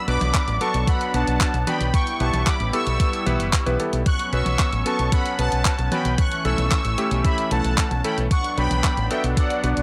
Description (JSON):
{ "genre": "italo disco", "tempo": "113 BPM", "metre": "4/4", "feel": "straight", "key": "B minor", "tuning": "A4 = 440 Hz", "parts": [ { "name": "analog synth brass", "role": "melody", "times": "0.0-9.8 s", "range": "D5 to F#6", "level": "-28 LUFS", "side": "equal", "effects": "chorus, tape echo" }, { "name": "warm analog pad", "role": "sustained chords", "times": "0.0-9.8 s", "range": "E3 to E4", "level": "-33 LUFS", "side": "equal", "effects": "chorus, tremolo" }, { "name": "warm electric grand piano", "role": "stabs", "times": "0.1-9.8 s", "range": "F#3 to B4", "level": "-30 LUFS", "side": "equal", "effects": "none" }, { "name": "fingered electric bass with an envelope filter", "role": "bass", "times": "0.1-9.8 s", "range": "F#1 to B1", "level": "-26 LUFS", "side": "equal", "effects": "none" }, { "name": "clean 12-bit digital drum machine", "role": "drums", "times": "0.1-9.8 s", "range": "handclaps, hi-hat, toms", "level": "-30 LUFS", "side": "equal", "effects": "none" }, { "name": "electronic kick drum", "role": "drums", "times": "0.3-9.5 s", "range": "none", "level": "-24 LUFS", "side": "equal", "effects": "none" } ], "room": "little or no reverb", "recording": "dry, gritty hardware recording, cassette tape", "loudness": "-21 LUFS", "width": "mono", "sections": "0.0-9.8 A section", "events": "none", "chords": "0.0 Bm; 1.9 Em; 4.1 F#sus4; 6.2 A; 8.3 Bm", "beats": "0.34 0.88 1.41 | 1.94 2.47 3.00 3.53 | 4.06 4.59 5.12 5.66 | 6.19 6.72 7.25 7.78 | 8.31 8.84 9.37" }